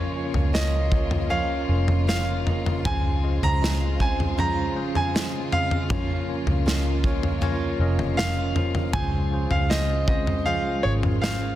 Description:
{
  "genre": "pop ballad",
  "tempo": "79 BPM",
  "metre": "4/4",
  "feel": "straight",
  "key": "Db major",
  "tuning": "A4 = 440 Hz",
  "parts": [
    { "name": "bright concert grand piano", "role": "melody", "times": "0.0-11.6 s", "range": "Db5 to Bb5", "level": "-29 LUFS", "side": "right 2 dB", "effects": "tape echo" },
    { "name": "tine electric piano", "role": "accompaniment", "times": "0.0-11.6 s", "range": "Db3 to Eb5", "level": "-30 LUFS", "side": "equal", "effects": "medium stereo tremolo" },
    { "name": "warm studio string section", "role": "sustained chords", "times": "0.0-11.6 s", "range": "Db3 to C5", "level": "-35 LUFS", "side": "left 2 dB", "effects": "none" },
    { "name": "picked steel-string acoustic guitar", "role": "arpeggios", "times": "0.0-11.6 s", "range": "Db3 to F4", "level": "-35 LUFS", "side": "right 6 dB", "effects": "none" },
    { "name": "vintage muted fingered electric bass", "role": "bass", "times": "0.0-11.6 s", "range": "F1 to Db2", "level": "-25 LUFS", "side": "equal", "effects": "none" },
    { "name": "modern studio drum kit", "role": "drums", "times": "0.3-11.4 s", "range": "kick drum, snare drum, toms", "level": "-26 LUFS", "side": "equal", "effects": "none" }
  ],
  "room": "light reverb, studio ambience",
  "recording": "dense, heavily limited modern master",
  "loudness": "-21 LUFS",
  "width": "side -13 dB against mid",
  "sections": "0.0-11.6 A section",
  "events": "none",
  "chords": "0.0 Bbm/Db; 2.9 Dbmaj7; 5.9 Bbm/Db; 8.9 Dbmaj7"
}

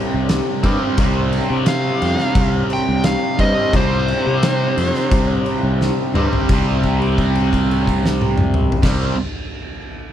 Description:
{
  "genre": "blues rock power trio and southern rock",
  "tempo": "87 BPM",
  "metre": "4/4",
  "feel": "straight",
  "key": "unclear",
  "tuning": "A4 = 442 Hz",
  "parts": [
    { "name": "dark smooth lead guitar", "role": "melody", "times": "0.0-5.8 s", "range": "C5 to G5", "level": "-22 LUFS", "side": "equal", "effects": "overdrive" },
    { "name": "raw garage guitar", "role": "riff", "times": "0.0-9.2 s", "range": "C3 to C4", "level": "-19 LUFS", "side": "right 1 dB", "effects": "overdrive, phaser" },
    { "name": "fuzz fingered electric bass", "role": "bass", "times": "0.1-9.1 s", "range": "C2 to C3", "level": "-20 LUFS", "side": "equal", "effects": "overdrive" },
    { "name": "oversized low-tuned drum kit", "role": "drums", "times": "0.3-9.0 s", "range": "crash cymbal, kick drum, snare drum, toms", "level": "-20 LUFS", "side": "equal", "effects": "none" }
  ],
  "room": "little or no reverb",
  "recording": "none",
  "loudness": "-15 LUFS",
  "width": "side -10 dB against mid",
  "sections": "0.0-6.5 A section; 6.5-9.2 B section",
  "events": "lead electric guitar solo 0.0-6.5; drum fill 5.8-6.5; held note 6.5-8.8",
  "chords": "0.0 C5"
}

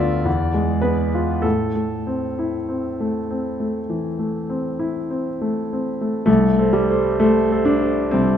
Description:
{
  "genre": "classical, romantic nocturne for solo piano",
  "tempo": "47-66 BPM",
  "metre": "4/4",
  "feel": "rubato",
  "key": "A minor",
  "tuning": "A4 = 439 Hz",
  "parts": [
    { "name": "clear concert grand piano", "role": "solo", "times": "0.0-8.4 s", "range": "C2 to E5", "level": "-18 LUFS", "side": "equal", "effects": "none" }
  ],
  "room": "moderate recital hall reverb, RT60 1.4 s",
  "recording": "none",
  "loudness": "-18 LUFS",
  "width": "side -9 dB against mid",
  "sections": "0.0-6.3 A section; 6.3-8.4 B section",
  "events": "none",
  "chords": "0.3 E7b9; 1.4 Am; 6.3 Am/C"
}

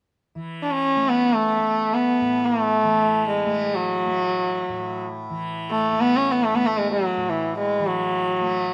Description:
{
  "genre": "indian classical, Hindustani",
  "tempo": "free time",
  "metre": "none",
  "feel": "none",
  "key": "A raga bilaval",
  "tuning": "A4 = 438 Hz",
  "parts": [
    { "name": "tanpura", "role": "drone", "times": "0.4-8.7 s", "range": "A2 to A3", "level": "-34 LUFS", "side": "equal", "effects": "none" },
    { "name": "rich sarangi", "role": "melody", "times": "0.6-8.7 s", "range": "E3 to D4", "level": "-22 LUFS", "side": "equal", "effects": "none" }
  ],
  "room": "little or no reverb",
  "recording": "recorded outdoors, with no room sound",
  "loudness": "-22 LUFS",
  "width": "mono",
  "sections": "0.4-8.7 A section",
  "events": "none",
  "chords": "none"
}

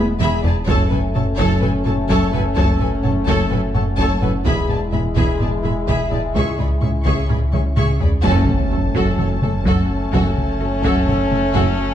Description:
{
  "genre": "cinematic, hybrid orchestral and electronic film score",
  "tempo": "127 BPM",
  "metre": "4/4",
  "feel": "straight",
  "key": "F# minor",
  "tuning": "A4 = 439 Hz",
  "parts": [
    { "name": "clear symphonic violin section", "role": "melody", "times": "0.0-11.9 s", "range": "G#5 to C#6", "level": "-28 LUFS", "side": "left 3 dB", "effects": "none" },
    { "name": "rich symphonic violin section", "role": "second line", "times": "0.0-11.8 s", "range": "F#4 to E5", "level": "-30 LUFS", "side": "left 2 dB", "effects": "none" },
    { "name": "clear symphonic viola section", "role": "accompaniment", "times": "0.0-11.8 s", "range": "G#4 to A4", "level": "-27 LUFS", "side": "equal", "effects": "none" },
    { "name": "clear French horn section", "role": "sustained chords", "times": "0.0-11.9 s", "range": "G#3 to E4", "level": "-23 LUFS", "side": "left 2 dB", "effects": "none" },
    { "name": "resonant blip pluck", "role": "arpeggios", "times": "0.0-11.7 s", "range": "C#3 to F#4", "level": "-28 LUFS", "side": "left 2 dB", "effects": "phaser, tape echo" },
    { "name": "rich symphonic cello section", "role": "bass", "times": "0.0-11.6 s", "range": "C#2 to F#2", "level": "-25 LUFS", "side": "right 2 dB", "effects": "none" },
    { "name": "rich symphonic double bass section", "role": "bass", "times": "0.0-11.6 s", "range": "E1 to C#2", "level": "-24 LUFS", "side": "right 3 dB", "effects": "none" },
    { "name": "sub bass with octave", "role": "bass", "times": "0.0-11.9 s", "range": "E1 to C#2", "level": "-24 LUFS", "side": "equal", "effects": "none" },
    { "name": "taiko ensemble", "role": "drums", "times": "0.2-11.9 s", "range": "none", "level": "-22 LUFS", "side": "equal", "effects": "none" },
    { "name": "impact", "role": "sound effects", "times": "8.2-10.1 s", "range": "none", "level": "-26 LUFS", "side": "equal", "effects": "none" }
  ],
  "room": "moderate recital hall reverb, RT60 1.4 s",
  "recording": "dark, warm production",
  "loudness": "-15 LUFS",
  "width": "side -10 dB against mid",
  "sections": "0.0-8.2 A section; 8.2-11.9 B section",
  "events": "drum fill 0.0-0.7, 7.5-8.2; band accent 8.2-8.7; impact 8.2-10.1",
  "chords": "0.0 E; 0.7 F#m; 4.5 E; 6.4 C#m; 8.2 F#m"
}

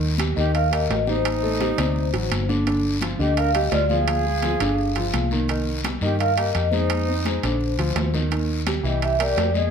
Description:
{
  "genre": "Afro-Cuban jazz",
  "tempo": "170 BPM",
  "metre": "4/4",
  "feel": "straight",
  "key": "Eb major",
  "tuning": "A4 = 437 Hz",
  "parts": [
    { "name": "clear concert grand piano", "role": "accompaniment", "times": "0.0-9.7 s", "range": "C3 to D5", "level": "-27 LUFS", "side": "right 1 dB", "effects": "none" },
    { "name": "vintage muted fingered electric bass", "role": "bass", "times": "0.0-9.7 s", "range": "G1 to G2", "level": "-24 LUFS", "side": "equal", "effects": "none" },
    { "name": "congas", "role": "percussion", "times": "0.0-9.7 s", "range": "none", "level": "-31 LUFS", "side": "left 2 dB", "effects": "none" },
    { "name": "guiro", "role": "percussion", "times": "0.2-9.7 s", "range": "none", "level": "-34 LUFS", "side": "left 6 dB", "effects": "none" },
    { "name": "timbales", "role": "percussion", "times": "0.2-9.6 s", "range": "none", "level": "-30 LUFS", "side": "right 8 dB", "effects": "none" },
    { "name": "vibraphone with soft mallets", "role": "melody", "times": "0.4-9.7 s", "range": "C5 to F5", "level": "-24 LUFS", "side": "left 2 dB", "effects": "none" },
    { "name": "breathy bright concert flute", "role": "second line", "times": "0.4-9.7 s", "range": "Eb4 to Bb4", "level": "-30 LUFS", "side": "right 4 dB", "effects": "none" }
  ],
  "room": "moderate club reverb, RT60 0.9 s",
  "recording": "none",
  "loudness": "-20 LUFS",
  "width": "side -7 dB against mid",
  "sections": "0.0-9.7 A section",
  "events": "none",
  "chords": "0.0 Eb; 1.2 Am7b5; 2.0 D7b9; 2.7 G5; 4.1 Ddim; 4.8 G5; 5.5 Cm7; 6.9 Fm7; 7.6 Bbadd9; 8.3 Eb; 9.0 C7"
}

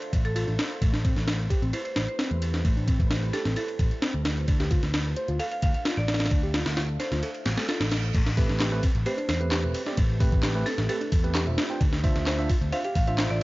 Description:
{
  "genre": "breakbeat, breaks",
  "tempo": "131 BPM",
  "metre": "4/4",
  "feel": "straight",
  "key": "A minor",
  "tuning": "A4 = 442 Hz",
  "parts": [
    { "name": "deep dark ambient pad", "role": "sustained chords", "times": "0.0-13.4 s", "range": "A3 to F5", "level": "-40 LUFS", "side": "equal", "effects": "chorus, built-in reverb, sidechain pumping" },
    { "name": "breakbeat sampler-style drum kit", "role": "drums", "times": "0.0-13.3 s", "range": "crash cymbal, kick drum, ride cymbal, snare drum", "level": "-26 LUFS", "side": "equal", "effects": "small room ambience" },
    { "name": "garage drum kit", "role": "drums", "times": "0.0-13.4 s", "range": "handclaps, hi-hat", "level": "-39 LUFS", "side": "left 1 dB", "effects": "small room ambience" },
    { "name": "picked electric bass", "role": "bass", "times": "0.1-13.4 s", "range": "E1 to E2", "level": "-27 LUFS", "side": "equal", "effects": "none" },
    { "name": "marimba with medium hard mallets", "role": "melody", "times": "0.2-13.4 s", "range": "A4 to F5", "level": "-35 LUFS", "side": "right 1 dB", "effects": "telephone sound, tape echo" },
    { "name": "mellow reed electric piano", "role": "riff", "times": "0.4-13.3 s", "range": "A3 to C5", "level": "-35 LUFS", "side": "left 1 dB", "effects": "tape echo" },
    { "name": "reverse cymbal", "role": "sound effects", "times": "7.4-8.1 s", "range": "none", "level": "-42 LUFS", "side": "right 7 dB", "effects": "none" },
    { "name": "tine electric piano", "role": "stabs", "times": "8.4-13.4 s", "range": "A3 to G5", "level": "-32 LUFS", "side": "right 2 dB", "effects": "tape echo" }
  ],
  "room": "digital ambience",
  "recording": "dry, gritty hardware recording, cassette tape, nothing above 7.5 kHz",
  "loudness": "-23 LUFS",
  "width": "side -20 dB against mid",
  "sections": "0.0-8.1 A section; 8.1-13.4 B section",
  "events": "reverse cymbal 7.4-8.1; drop 8.1-13.4",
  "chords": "0.0 Dm9; 0.8 Am9; 4.3 Dm9; 8.1 Am9; 11.6 Dm9"
}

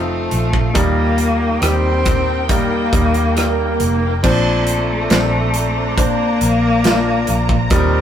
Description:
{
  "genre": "pop ballad",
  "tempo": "69 BPM",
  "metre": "4/4",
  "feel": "straight",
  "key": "Bb major",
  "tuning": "A4 = 439 Hz",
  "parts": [
    { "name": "bright cello", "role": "melody", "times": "0.0-8.0 s", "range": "A3 to C4", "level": "-20 LUFS", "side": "left 2 dB", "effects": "none" },
    { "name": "clear concert grand piano", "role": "accompaniment", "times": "0.0-8.0 s", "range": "Bb2 to C5", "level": "-21 LUFS", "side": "equal", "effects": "none" },
    { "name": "warm studio string section", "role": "sustained chords", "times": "0.0-8.0 s", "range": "C4 to Bb5", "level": "-25 LUFS", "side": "equal", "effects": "none" },
    { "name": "vintage muted fingered electric bass", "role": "bass", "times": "0.0-8.0 s", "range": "F1 to Eb2", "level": "-20 LUFS", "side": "equal", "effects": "none" },
    { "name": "modern studio drum kit", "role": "drums", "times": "0.3-7.9 s", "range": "crash cymbal, hi-hat, kick drum, rim click, snare drum", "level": "-18 LUFS", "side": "right 1 dB", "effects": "none" },
    { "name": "swell", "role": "sound effects", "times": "2.8-4.2 s", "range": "none", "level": "-24 LUFS", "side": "right 3 dB", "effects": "none" }
  ],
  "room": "moderate studio reverb, RT60 0.6 s",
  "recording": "rough rehearsal-room recording, warm saturation, faint mains hum",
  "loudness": "-14 LUFS",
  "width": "side -9 dB against mid",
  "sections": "0.0-4.2 A section; 4.2-8.0 B section",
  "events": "swell 2.8-4.2",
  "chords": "0.0 F; 0.8 Eb; 4.2 Bbadd9"
}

